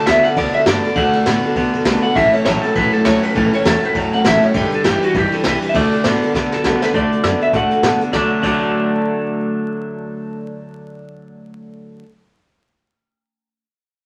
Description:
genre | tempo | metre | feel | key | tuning
rockabilly | 201 BPM | 4/4 | swing 59% on 8ths | D major | A4 = 440 Hz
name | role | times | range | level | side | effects
electric guitar through a small old amp | melody | 0.0-12.0 s | F#4 to F#5 | -21 LUFS | equal | none
picked steel-string acoustic guitar | accompaniment | 0.0-12.0 s | A2 to B4 | -24 LUFS | equal | none
twangy electric guitar | riff | 0.0-12.0 s | G2 to D4 | -23 LUFS | equal | none
upright bass | bass | 0.1-12.0 s | G1 to B2 | -27 LUFS | equal | none
jazz brush drum kit | drums | 0.1-8.5 s | crash cymbal, hi-hat, kick drum, ride cymbal, snare drum | -23 LUFS | equal | none
room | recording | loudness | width
wet studio reverb, RT60 0.8 s | vinyl crackle | -16 LUFS | mono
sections
0.0-6.9 A section; 6.9-8.1 B section; 8.1-10.5 C section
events
drum fill 6.3-6.9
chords
0.0 D; 2.2 A; 4.5 G; 5.7 D

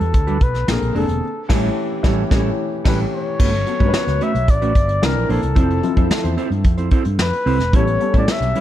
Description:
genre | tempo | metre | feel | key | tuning
polished 1980s jazz-funk pop | 111 BPM | 4/4 | straight | unclear | A4 = 440 Hz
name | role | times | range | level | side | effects
breathy flugelhorn | melody | 0.0-8.6 s | A4 to E5 | -24 LUFS | left 2 dB | none
dark baby grand piano | accompaniment | 0.0-8.6 s | D3 to B4 | -23 LUFS | left 3 dB | wide subtle chorus
mellow electric guitar | riff | 0.0-8.6 s | G3 to C5 | -25 LUFS | right 6 dB | lush chorus
mellow fretless electric bass | bass | 0.0-8.5 s | E1 to A2 | -21 LUFS | equal | lush chorus
vintage brush drum kit | drums | 0.0-8.6 s | crash cymbal, hi-hat, kick drum, snare drum | -18 LUFS | equal | none
room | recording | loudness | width
small room ambience | dark, warm production | -15 LUFS | side -12 dB against mid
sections
0.0-3.4 A section; 3.4-8.6 B section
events
band accent 1.2-3.4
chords
0.0 Em9; 0.7 Bb9; 1.2 A7; 3.4 Gmaj9#11; 5.0 C9; 5.6 Fmaj7; 7.7 A9

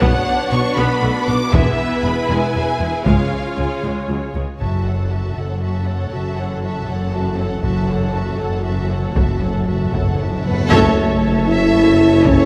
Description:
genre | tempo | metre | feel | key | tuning
cinematic, epic orchestral film score | 79 BPM (dotted quarters) | 6/8 | straight | F# minor | A4 = 439 Hz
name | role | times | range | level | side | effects
warm symphonic violin section | melody | 0.0-12.5 s | A4 to D6 | -28 LUFS | equal | none
dark studio violin section | second line | 0.0-12.5 s | E4 to A5 | -30 LUFS | equal | none
clear symphonic viola section | accompaniment | 0.0-12.5 s | F#3 to C#5 | -27 LUFS | equal | none
mellow French horn section | sustained chords | 0.0-12.5 s | E3 to B4 | -23 LUFS | equal | none
rich symphonic string section | sustained chords | 0.0-4.6, 10.7-12.5 s | G#3 to G#5 | -30 LUFS | equal | none
mellow tuba | bass | 0.0-4.5, 10.7-12.5 s | E1 to C#2 | -25 LUFS | equal | none
rich symphonic double bass section | bass | 0.0-12.5 s | E1 to C#2 | -26 LUFS | equal | none
warm symphonic cello section | bass | 0.0-12.5 s | C#2 to B2 | -27 LUFS | equal | none
taiko ensemble | drums | 0.0-12.5 s | none | -23 LUFS | equal | none
timpani | percussion | 3.1-3.8, 7.6-11.4 s | F#2 to C#3 | -28 LUFS | equal | none
impact, reverse cymbal and sub drop | sound effects | 4.6-6.1, 10.5-12.2 s | none | -35 LUFS | equal | none
room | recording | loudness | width
wet scoring stage reverb, RT60 1.8 s | none | -18 LUFS | mono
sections
0.0-4.6 A section; 4.6-10.7 B section; 10.7-12.5 C section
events
impact 4.6-6.1, 10.7-12.2; timpani fill 7.6-10.7; reverse cymbal 10.5; band accent 10.7-11.2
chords
0.0 Bm; 1.5 E; 3.1 C#; 4.6 F#m7

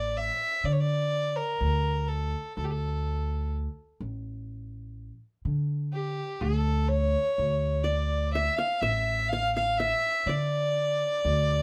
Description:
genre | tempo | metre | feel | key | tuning
arabic | 124 BPM (eighths) | 10/8 | straight | D maqam nahawand | A4 = 440 Hz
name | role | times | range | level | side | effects
dark violin | melody | 0.0-11.6 s | G4 to F5 | -30 LUFS | equal | none
upright bass | bass | 0.0-11.6 s | A1 to D3 | -31 LUFS | equal | none
qanun | second line | 7.8-11.6 s | D5 to F5 | -35 LUFS | equal | none
room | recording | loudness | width
moderate studio reverb, RT60 0.5 s | none | -28 LUFS | mono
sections
0.0-11.6 A section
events
none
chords
none

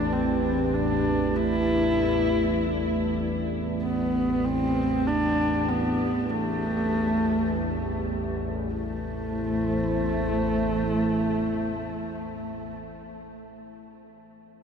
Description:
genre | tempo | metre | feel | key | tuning
dark ambient drone | 49 BPM | 4/4 | straight | A minor | A4 = 443 Hz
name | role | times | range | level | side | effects
dark horsehead fiddle | melody | 0.0-12.7 s | A3 to E4 | -26 LUFS | left 1 dB | tape echo
dark analog pad | sustained chords | 0.0-13.3 s | A3 to E5 | -30 LUFS | right 2 dB | chorus
analog drone | drone | 0.0-12.7 s | A1 to E2 | -30 LUFS | left 1 dB | chorus
room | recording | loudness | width
wet huge ambient reverb, RT60 7.8 s | none | -23 LUFS | side -6 dB against mid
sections
0.0-8.7 A section; 8.7-13.6 B section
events
none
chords
0.0 Gadd9/A; 8.7 Am

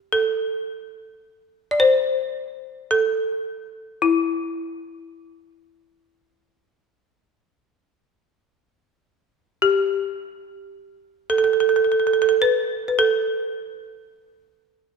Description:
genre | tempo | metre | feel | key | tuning
turkish | free time | none | none | A makam nihavent | A4 = 440 Hz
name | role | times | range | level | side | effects
folk marimba with hard mallets | solo | 0.0-15.0 s | E4 to D5 | -19 LUFS | right 1 dB | none
room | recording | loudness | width
moderate scoring stage reverb, RT60 1.9 s | minimal, uncompressed stereo recording | -19 LUFS | side -5 dB against mid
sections
0.0-15.0 A section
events
none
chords
none

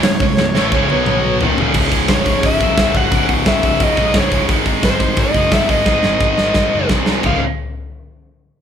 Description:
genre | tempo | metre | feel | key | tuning
heavy metal | 175 BPM | 4/4 | straight | C# minor | A4 = 438 Hz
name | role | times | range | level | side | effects
bluesy overdriven lead guitar | melody | 0.0-7.4 s | B#4 to F#5 | -18 LUFS | equal | distortion
heavy high-gain guitar | riff | 0.0-7.4 s | C#2 to B3 | -20 LUFS | left 6 dB | distortion
heavy high-gain guitar | riff | 0.0-7.4 s | C#2 to B3 | -20 LUFS | right 9 dB | distortion
high-gain distorted guitar | riff | 0.0-1.8 s | C#2 to B3 | -24 LUFS | equal | none
fuzz picked electric bass | bass | 0.0-7.4 s | C#1 to B#1 | -23 LUFS | equal | overdrive
tight metal drum kit | drums | 0.0-7.3 s | crash cymbal, hi-hat, kick drum, snare drum, toms | -17 LUFS | equal | none
room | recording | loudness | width
light reverb | band playing live in one room | -12 LUFS | side -8 dB against mid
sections
0.0-1.7 A section; 1.7-7.2 B section; 7.2-8.6 C section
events
drum fill 0.4-1.7, 5.9-7.2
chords
0.0 C#m; 0.9 B5; 1.4 C#5; 1.7 C#m; 4.5 G#5; 7.2 C#5

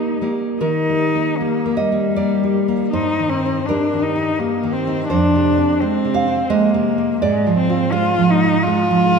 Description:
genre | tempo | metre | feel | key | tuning
romantic duo for cello and classical guitar | 71-87 BPM | 3/4 | rubato | Eb major | A4 = 444 Hz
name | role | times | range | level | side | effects
rich cello | melody | 0.0-9.2 s | G3 to F4 | -18 LUFS | left 3 dB | none
nylon-string guitar | accompaniment | 0.0-9.2 s | F2 to F5 | -18 LUFS | right 3 dB | none
room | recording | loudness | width
wet concert hall reverb, RT60 2.5 s | minimal, uncompressed stereo recording | -15 LUFS | side -5 dB against mid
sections
0.6-9.2 A section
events
none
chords
0.0 Eb; 2.9 Eb/G; 5.1 Fm; 7.2 Fm/Ab

